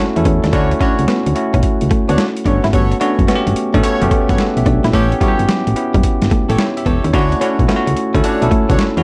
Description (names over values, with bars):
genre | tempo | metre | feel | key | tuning
R&B, new jack swing | 109 BPM | 4/4 | swing 66% on 16ths | D major | A4 = 439 Hz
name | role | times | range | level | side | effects
bell-like tine electric piano | accompaniment | 0.0-9.0 s | A3 to F#5 | -20 LUFS | equal | none
warm horn section | stabs | 0.0-8.9 s | D4 to C#5 | -26 LUFS | equal | tape echo
solid FM bass | bass | 0.2-9.0 s | E1 to E2 | -19 LUFS | equal | none
boom bap sampler-style drum kit | drums | 0.2-9.0 s | hi-hat, kick drum, snare drum | -20 LUFS | equal | overdrive
direct-recorded clean electric guitar | riff | 0.3-8.8 s | F#3 to E4 | -24 LUFS | equal | ensemble chorus
room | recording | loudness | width
digital ambience | dark, warm production | -15 LUFS | mono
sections
0.0-9.0 A section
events
none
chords
0.0 Dmaj7; 2.5 Gmaj9#11; 4.9 A7; 7.1 Dmaj7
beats
| 0.53 1.08 1.63 2.18 | 2.73 3.28 3.83 4.38 | 4.93 5.49 6.04 6.59 | 7.14 7.69 8.24 8.79